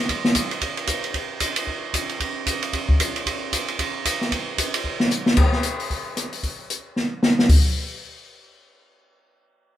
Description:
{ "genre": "jazz", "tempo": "227 BPM", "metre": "4/4", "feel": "swing 60% on 8ths", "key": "none", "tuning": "none", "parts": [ { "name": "open jazz drum kit", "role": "drums", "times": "0.1-7.6 s", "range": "crash cymbal, hi-hat, kick drum, ride cymbal, rim click, snare drum", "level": "-20 LUFS", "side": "equal", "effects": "none" } ], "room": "light reverb", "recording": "band playing live in one room", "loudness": "-20 LUFS", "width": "side -12 dB against mid", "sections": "0.0-5.4 A section; 5.4-7.5 B section; 7.5-9.6 C section", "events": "drum fill 5.1, 7.0-7.5", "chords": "none" }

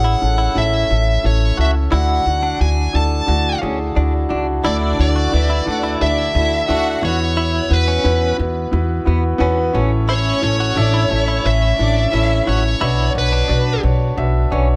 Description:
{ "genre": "piano-driven pop", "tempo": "88 BPM", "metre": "4/4", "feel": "straight", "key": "A major", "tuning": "A4 = 440 Hz", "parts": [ { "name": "dark smooth lead guitar", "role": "melody", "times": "0.0-13.8 s", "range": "B4 to A5", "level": "-23 LUFS", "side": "equal", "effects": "overdrive" }, { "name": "warm grand piano", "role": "accompaniment", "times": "0.0-14.8 s", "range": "A2 to E5", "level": "-24 LUFS", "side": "equal", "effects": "none" }, { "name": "direct-recorded clean electric guitar", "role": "riff", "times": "0.0-14.7 s", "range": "B3 to F#4", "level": "-28 LUFS", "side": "equal", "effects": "tremolo" }, { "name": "upright bass", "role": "bass", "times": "0.0-14.8 s", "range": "A1 to E2", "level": "-20 LUFS", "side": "equal", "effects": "none" }, { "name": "warm studio violin section", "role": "second line", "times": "4.6-12.6 s", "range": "C#4 to F#5", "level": "-27 LUFS", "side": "equal", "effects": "digital delay" } ], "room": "light reverb, small room ambience", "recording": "none", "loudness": "-17 LUFS", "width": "mono", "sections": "0.0-4.6 A section; 4.6-14.8 B section", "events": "none", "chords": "0.0 A; 1.9 Dadd9; 7.0 Esus2; 9.8 A; 12.8 Bmadd9" }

